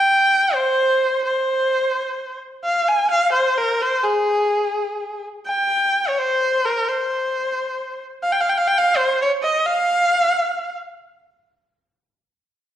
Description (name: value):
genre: mexican folk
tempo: 85 BPM (dotted quarters)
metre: 6/8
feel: straight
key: unclear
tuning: A4 = 441 Hz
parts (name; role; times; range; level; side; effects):
- clear erhu; solo; 0.0-10.7 s; Ab4 to Ab5; -17 LUFS; equal; none
room: wet large studio reverb, RT60 1.2 s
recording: band playing live in one room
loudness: -17 LUFS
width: side -11 dB against mid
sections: 0.0-5.4 A section; 5.4-11.3 B section; 11.3-12.8 C section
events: slowing down 8.2-11.3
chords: none